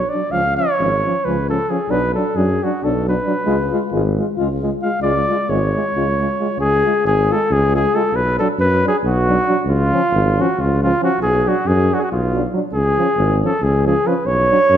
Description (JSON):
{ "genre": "balkan folk, Balkan brass band", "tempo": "272 BPM (eighths)", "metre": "7/8", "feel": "straight", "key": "C# phrygian dominant", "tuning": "A4 = 440 Hz", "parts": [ { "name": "warm flugelhorn", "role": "melody", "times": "0.0-14.8 s", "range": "E#4 to E#5", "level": "-18 LUFS", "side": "equal", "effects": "none" }, { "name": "warm trombone", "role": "accompaniment", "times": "0.0-14.6 s", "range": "E#3 to G#3", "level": "-24 LUFS", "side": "right 4 dB", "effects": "none" }, { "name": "mellow tuba", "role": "bass", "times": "0.0-14.8 s", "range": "G#1 to F#2", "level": "-20 LUFS", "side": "equal", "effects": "none" }, { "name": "warm French horn", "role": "accompaniment", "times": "0.1-14.6 s", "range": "C#4 to E#4", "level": "-25 LUFS", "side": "left 5 dB", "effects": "none" } ], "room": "moderate scoring stage reverb, RT60 1.6 s", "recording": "dark, warm production", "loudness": "-15 LUFS", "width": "side -9 dB against mid", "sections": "0.0-6.6 A section; 6.6-14.8 B section", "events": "speeding up 0.0-14.8; flugelhorn solo 0.0-6.6", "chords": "0.3 C#; 1.9 Bm; 3.5 C#; 8.1 Bm; 9.7 C#; 11.2 Bm; 12.7 C#; 14.2 Bm" }